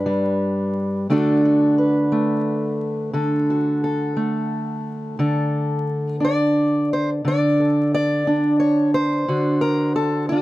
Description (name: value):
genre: acoustic country blues, solo or duo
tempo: 59 BPM (dotted quarters)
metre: 12/8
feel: straight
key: unclear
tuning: A4 = 440 Hz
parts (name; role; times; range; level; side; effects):
- fingerpicked steel-string acoustic guitar; solo; 0.0-10.4 s; G2 to D5; -18 LUFS; equal; none
room: light reverb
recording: close, detailed microphones, vinyl crackle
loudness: -18 LUFS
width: side -16 dB against mid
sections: 0.0-10.4 A section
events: none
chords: 0.0 G; 1.1 D